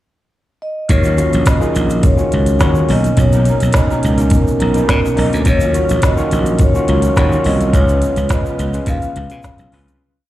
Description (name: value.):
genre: disco.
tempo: 105 BPM.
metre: 4/4.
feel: straight.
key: Eb minor.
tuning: A4 = 439 Hz.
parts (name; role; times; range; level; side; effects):
vibraphone with soft mallets; melody; 0.6-9.7 s; A#4 to F5; -20 LUFS; equal; slapback echo, tape echo.
electric guitar through a small old amp; accompaniment; 0.9-9.9 s; Gb3 to B4; -27 LUFS; right 3 dB; ensemble chorus, plate reverb, slapback echo.
percussive tonewheel organ; sustained chords; 0.9-10.0 s; B2 to F5; -24 LUFS; right 1 dB; none.
slap bass; bass; 0.9-10.0 s; Bb1 to B2; -16 LUFS; equal; none.
organic electronic drum kit; drums; 0.9-10.0 s; hi-hat, kick drum, snare drum; -15 LUFS; equal; none.
egg shaker; percussion; 0.9-10.0 s; none; -37 LUFS; right 4 dB; none.
overdriven tine electric piano; accompaniment; 1.2-10.0 s; B2 to Cb5; -19 LUFS; left 1 dB; plate reverb, slapback echo.
room: light reverb.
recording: live gig heard through the venue's PA, recital hall reverb.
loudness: -12 LUFS.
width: side -14 dB against mid.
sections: 0.0-0.9 pickup bar; 0.9-10.0 verse.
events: fade-out 7.7-10.0.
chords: 0.0 N.C.; 0.9 Ebm9; 2.9 Bmaj9; 5.5 Ebm9; 7.7 Db7.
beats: 0.32 | 0.89 1.46 2.03 2.60 | 3.18 3.75 4.32 4.89 | 5.46 6.03 6.60 7.17 | 7.73 8.30 8.87 9.44.